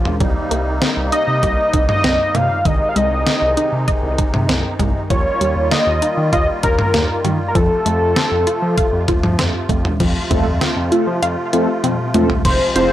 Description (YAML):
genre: synth-pop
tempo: 98 BPM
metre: 4/4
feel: straight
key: unclear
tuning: A4 = 439 Hz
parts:
  - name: musette accordion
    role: sustained chords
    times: 0.0-12.9 s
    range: C3 to F4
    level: -24 LUFS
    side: equal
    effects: none
  - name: wide unison pluck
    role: arpeggios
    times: 0.0-12.4 s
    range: Eb3 to F5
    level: -23 LUFS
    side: equal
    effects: tape echo
  - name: smooth synth bass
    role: bass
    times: 0.0-12.9 s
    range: F1 to F3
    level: -21 LUFS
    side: equal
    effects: none
  - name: detuned 8-bit digital drum machine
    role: drums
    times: 0.1-12.9 s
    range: cowbell, crash cymbal, hi-hat, kick drum, snare drum, toms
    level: -19 LUFS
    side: equal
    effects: none
  - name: fat analog lead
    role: melody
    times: 1.1-12.9 s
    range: A4 to F5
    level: -18 LUFS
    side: equal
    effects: chorus, tape echo
  - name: mellow synth brass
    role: accompaniment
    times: 10.3-12.9 s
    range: A3 to C5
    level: -20 LUFS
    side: equal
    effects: chorus
room: little or no reverb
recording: dry, gritty hardware recording, transformer saturation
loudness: -14 LUFS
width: side -13 dB against mid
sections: 0.0-10.0 A section; 10.0-12.4 B section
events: drum fill 11.8-12.4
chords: 0.2 Cm7; 2.7 Ab/C; 5.1 Ebadd9; 7.6 F